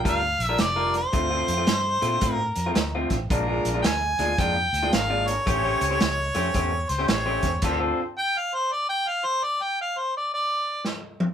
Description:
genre	electric blues shuffle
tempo	111 BPM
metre	4/4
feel	swing 64% on 8ths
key	D minor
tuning	A4 = 441 Hz
part	electric guitar through a small old amp	riff	0.0-8.0 s	Bb2 to B#4	-27 LUFS	left 2 dB	none
part	warm harmonica	melody	0.1-10.8 s	C5 to Ab5	-24 LUFS	equal	overdrive
part	vintage muted fingered electric bass	bass	0.1-7.9 s	F1 to Bb2	-30 LUFS	equal	none
part	vintage drum kit	drums	0.1-11.3 s	crash cymbal, hi-hat, kick drum, snare drum, toms	-26 LUFS	right 1 dB	none
part	warm horn section	stabs	3.3-8.1 s	C#4 to C#5	-32 LUFS	equal	none
room	light reverb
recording	band playing live in one room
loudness	-22 LUFS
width	side -8 dB against mid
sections	0.0-11.3 A section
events	stop 7.6-11.3; drum fill 10.8-11.3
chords	0.0 Gm7; 1.1 Dm7; 3.3 Bb7; 5.5 A7#9; 7.6 Dm7

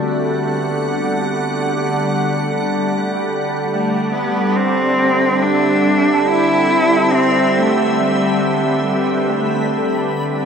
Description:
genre	ambient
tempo	70 BPM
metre	3/4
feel	straight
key	D mixolydian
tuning	A4 = 440 Hz
part	soft additive organ-like pad	sustained chords	0.0-10.5 s	D3 to F#5	-17 LUFS	right 1 dB	ensemble chorus, built-in reverb
part	muted felt-like synth keys	arpeggios	0.0-10.5 s	B3 to A5	-27 LUFS	left 1 dB	chorus, ping-pong delay
part	rich cello	melody	3.7-9.7 s	G3 to E4	-17 LUFS	equal	ping-pong delay
part	backwards swelling texture	texture	8.1-10.5 s	B4 to B5	-33 LUFS	equal	built-in reverb, analog chorus
room	wet plate reverb, RT60 3.2 s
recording	dreamy mix soaked in reverb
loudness	-14 LUFS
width	side -6 dB against mid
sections	0.0-4.6 A section; 4.6-10.5 B section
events	fade-in on synth texture 4.6-10.5; fade-out on synth keys 4.6-10.5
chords	0.0 D9sus4

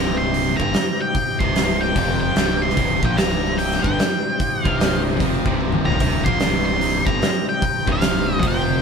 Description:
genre	blues rock power trio and southern rock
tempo	148 BPM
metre	4/4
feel	swing 63% on 8ths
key	C minor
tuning	A4 = 441 Hz
part	octave-fuzz lead guitar	melody	0.0-8.8 s	F5 to C6	-23 LUFS	equal	distortion
part	overdriven tonewheel organ	sustained chords	0.0-8.8 s	C4 to C5	-31 LUFS	right 1 dB	slow rotary speaker
part	cranked stack guitar	riff	0.0-8.8 s	C2 to Bb3	-23 LUFS	equal	overdrive
part	fuzz fingered electric bass	bass	0.0-8.8 s	C1 to Bb1	-26 LUFS	equal	overdrive
part	oversized low-tuned drum kit	drums	0.3-8.6 s	hi-hat, kick drum, snare drum, toms	-21 LUFS	equal	none
room	moderate stone room reverb, RT60 1.0 s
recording	band playing live in one room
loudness	-17 LUFS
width	side -6 dB against mid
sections	0.0-8.8 A section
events	drum fill 5.6-6.0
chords	0.0 Cm; 2.0 F5; 2.4 Cm

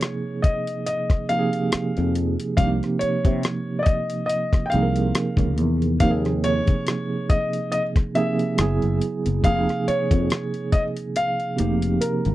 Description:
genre	R&B, neo-soul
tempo	70 BPM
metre	4/4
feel	swing 56% on 16ths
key	Bb dorian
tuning	A4 = 441 Hz
part	warm concert grand piano	melody	0.0-12.3 s	Bb4 to G5	-26 LUFS	left 1 dB	slapback echo
part	tine electric piano	accompaniment	0.0-12.3 s	C3 to Bb4	-24 LUFS	right 3 dB	medium tremolo
part	dusty soul sampler-style drum kit	drums	0.0-12.3 s	hi-hat, kick drum, rim click	-21 LUFS	left 1 dB	none
part	sustaining fretless electric bass	bass	1.7-12.3 s	F1 to C3	-22 LUFS	left 1 dB	lush chorus
room	little or no reverb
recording	dry, close 1970s-style studio recording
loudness	-20 LUFS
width	side -15 dB against mid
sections	0.0-12.3 A section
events	drum fill 11.1-12.3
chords	0.0 Bb9sus4; 2.6 Cm7; 6.0 Eb7sus4; 8.6 Gb9sus4; 9.4 Fm11

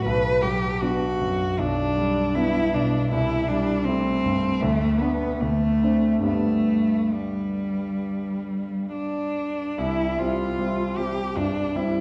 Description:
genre	classical, romantic duo for cello and grand piano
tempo	64-81 BPM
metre	4/4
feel	rubato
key	G major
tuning	A4 = 441 Hz
part	rich cello	melody	0.0-12.0 s	G3 to B4	-26 LUFS	equal	none
part	warm grand piano	accompaniment	0.0-12.0 s	B1 to E4	-28 LUFS	equal	none
room	wet recital hall reverb, RT60 1.6 s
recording	heard from further back in the room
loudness	-24 LUFS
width	mono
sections	0.0-9.8 A section; 9.8-12.0 B section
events	none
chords	0.1 Bm; 1.6 G/B; 3.1 Am7/C; 4.6 Bm7/D; 5.4 D5; 6.3 G; 9.8 C

